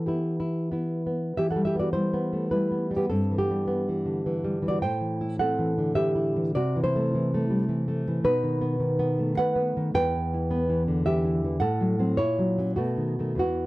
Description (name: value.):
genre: romantic piece for solo classical guitar.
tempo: 105 BPM.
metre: 3/4.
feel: uneven beats, rubato.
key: E minor.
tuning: A4 = 440 Hz.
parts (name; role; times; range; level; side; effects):
nylon-string guitar; solo; 0.0-13.7 s; E2 to G5; -24 LUFS; equal; none.
room: light reverb.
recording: dry, close 1970s-style studio recording.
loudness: -24 LUFS.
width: side -18 dB against mid.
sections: 0.0-1.3 A section; 1.3-13.7 A section.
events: none.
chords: 0.0 Em; 3.1 Em/G; 4.8 Am7; 6.6 Am/C; 8.2 B; 9.9 Em; 11.6 F#dim/A; 12.2 F#7/A#; 12.8 B7.